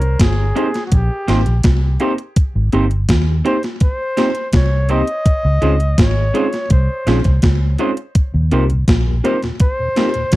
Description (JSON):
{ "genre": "lovers rock reggae", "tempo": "83 BPM", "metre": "4/4", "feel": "straight", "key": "unclear", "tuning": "A4 = 444 Hz", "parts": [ { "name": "warm flugelhorn", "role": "melody", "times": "0.0-10.4 s", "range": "Gb4 to Eb5", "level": "-22 LUFS", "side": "equal", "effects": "tape echo" }, { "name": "vintage muted fingered electric bass", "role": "bass", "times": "0.0-10.4 s", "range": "G1 to Eb2", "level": "-15 LUFS", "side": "equal", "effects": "none" }, { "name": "gated 80s digital drum machine", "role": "drums", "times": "0.0-10.4 s", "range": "hi-hat, kick drum, snare drum", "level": "-15 LUFS", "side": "equal", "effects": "gated reverb, gated reverb snare, overdrive, slapback echo" }, { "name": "mellow tine electric piano", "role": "accompaniment", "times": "0.4-10.1 s", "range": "Bb3 to Bb4", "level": "-21 LUFS", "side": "left 2 dB", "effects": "medium stereo tremolo" }, { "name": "electric guitar through a small old amp", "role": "stabs", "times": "0.6-10.1 s", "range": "Ab3 to C5", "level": "-20 LUFS", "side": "right 4 dB", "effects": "none" }, { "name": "mellow tonewheel organ", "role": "accompaniment", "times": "8.3-10.2 s", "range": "Eb2 to Eb4", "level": "-26 LUFS", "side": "left 2 dB", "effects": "chorus vibrato, slow rotary speaker, slapback echo" } ], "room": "little or no reverb", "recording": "dry, close 1970s-style studio recording", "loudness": "-13 LUFS", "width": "side -17 dB against mid", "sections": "0.0-10.4 A section", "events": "none", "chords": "0.0 Cm7; 5.3 Dbmaj7; 8.2 Eb6", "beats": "0.19 0.92 1.64 | 2.36 3.09 3.81 4.54 | 5.26 5.98 6.71 7.43 | 8.16 8.88 9.60 10.33" }